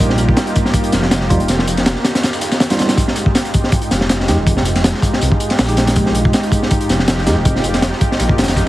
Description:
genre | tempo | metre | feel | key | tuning
drum and bass, jungle | 161 BPM | 4/4 | swing 54% on 16ths | F minor | A4 = 441 Hz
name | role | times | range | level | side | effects
lush unison pad | sustained chords | 0.0-8.7 s | Ab3 to G4 | -22 LUFS | equal | chorus
tine electric piano | stabs | 0.0-7.4 s | G3 to G4 | -22 LUFS | right 2 dB | dub echo
dark detuned saw bass | bass | 0.0-8.7 s | Eb1 to F2 | -18 LUFS | equal | none
crunchy breakbeat drum kit | drums | 0.0-8.7 s | hi-hat, kick drum, snare drum | -15 LUFS | equal | none
dusty soul sampler-style drum kit | drums | 0.0-8.7 s | hi-hat, snare drum, tambourine | -27 LUFS | left 2 dB | overdrive, high-pass filter on perc, high-pass filter on snare, high-pass filter on hats, high-pass filter on room
room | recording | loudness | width
light reverb, studio ambience | heavily compressed radio sound, multiband compression, vinyl crackle | -12 LUFS | side -16 dB against mid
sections
0.0-8.7 A section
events
none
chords
0.0 Ebadd9; 3.0 Fm9

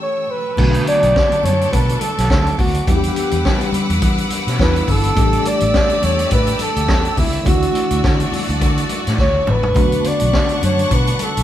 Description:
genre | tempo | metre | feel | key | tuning
disco | 105 BPM | 4/4 | swing 56% on 16ths | unclear | A4 = 440 Hz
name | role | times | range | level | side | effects
mellow flugelhorn | melody | 0.0-11.4 s | E4 to D5 | -19 LUFS | equal | none
tine electric piano | accompaniment | 0.0-11.4 s | D3 to G4 | -23 LUFS | left 2 dB | overdrive, fast stereo tremolo
warm studio string section | sustained chords | 0.0-11.4 s | G4 to E6 | -28 LUFS | right 1 dB | none
clear studio string section | second line | 0.6-11.4 s | F#3 to C#6 | -25 LUFS | left 1 dB | none
vintage muted fingered electric bass | bass | 0.6-11.4 s | G1 to E3 | -20 LUFS | equal | none
vintage drum kit | drums | 0.6-11.4 s | crash cymbal, hi-hat, kick drum, snare drum, toms | -19 LUFS | equal | none
congas | percussion | 0.6-11.3 s | none | -29 LUFS | left 3 dB | none
room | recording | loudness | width
moderate studio reverb, RT60 0.8 s | band playing live in one room | -14 LUFS | side -12 dB against mid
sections
0.6-11.4 A section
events
break 0.0-0.6; drum fill 9.2-9.8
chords
0.0 A7; 0.6 Bm9; 2.9 Em9; 5.2 A7sus4; 7.5 Dmaj9; 9.8 Bm9

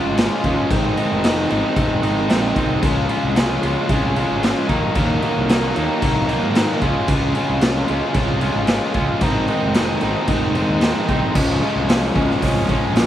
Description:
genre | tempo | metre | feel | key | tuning
indie rock | 113 BPM | 4/4 | straight | Db major | A4 = 440 Hz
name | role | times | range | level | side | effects
raw garage guitar | riff | 0.0-13.1 s | Ab2 to F4 | -19 LUFS | equal | overdrive, slapback echo
fuzz fingered electric bass | bass | 0.0-13.1 s | F1 to Ab2 | -25 LUFS | equal | overdrive
raw garage drum kit | drums | 0.2-13.1 s | crash cymbal, hi-hat, kick drum, snare drum | -20 LUFS | equal | none
room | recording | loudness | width
little or no reverb | vinyl crackle | -16 LUFS | side -11 dB against mid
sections
0.0-11.4 A section; 11.4-13.1 B section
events
none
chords
0.0 Db; 0.7 Ab; 2.8 Db; 4.7 Ebm; 6.8 Db; 9.2 Ab; 11.4 Db

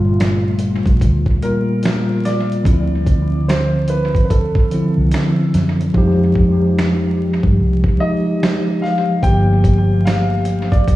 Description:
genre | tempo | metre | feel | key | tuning
lo-fi hip hop | 73 BPM | 4/4 | swing 62% on 16ths | G minor | A4 = 443 Hz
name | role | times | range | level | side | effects
tine electric piano | accompaniment | 0.0-11.0 s | Bb2 to G4 | -17 LUFS | equal | medium stereo tremolo, cassette tape, low-pass filter, tape echo
vintage muted fingered electric bass | bass | 0.0-11.0 s | G1 to G2 | -18 LUFS | equal | none
dusty soul sampler-style drum kit | drums | 0.2-11.0 s | finger snaps, hi-hat, kick drum, snare drum | -18 LUFS | equal | overdrive
warm upright piano | melody | 1.4-11.0 s | A4 to G5 | -23 LUFS | equal | low-pass filter, tape echo
room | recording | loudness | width
moderate echo chamber reverb, RT60 2.2 s | echo-heavy mix, vinyl crackle, studio reverb | -13 LUFS | side -16 dB against mid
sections
0.0-11.0 A section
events
hi-hats muted 5.9-9.2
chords
0.0 Gm9; 2.7 Dm9; 5.9 Fm9; 9.2 Gm9

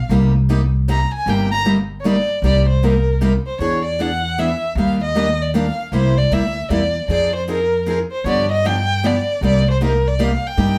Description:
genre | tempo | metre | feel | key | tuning
acoustic string swing (jazz manouche) | 155 BPM | 3/4 | swing 61% on 8ths | C minor | A4 = 440 Hz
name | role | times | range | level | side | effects
warm violin | melody | 0.0-10.8 s | Bb4 to Bb5 | -22 LUFS | equal | none
upright bass | bass | 0.0-10.8 s | G1 to G2 | -21 LUFS | equal | none
picked steel-string acoustic guitar | accompaniment | 0.1-10.8 s | C3 to G#4 | -22 LUFS | equal | none
room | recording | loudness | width
wet studio reverb, RT60 0.6 s | heard from further back in the room | -18 LUFS | mono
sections
0.0-2.4 A section; 2.4-10.8 B section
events
violin solo 0.0-2.4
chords
0.1 Cm7; 3.6 E9; 4.8 Ebmaj9; 5.9 C7; 7.1 Fm7; 8.3 G7; 9.4 Cm9

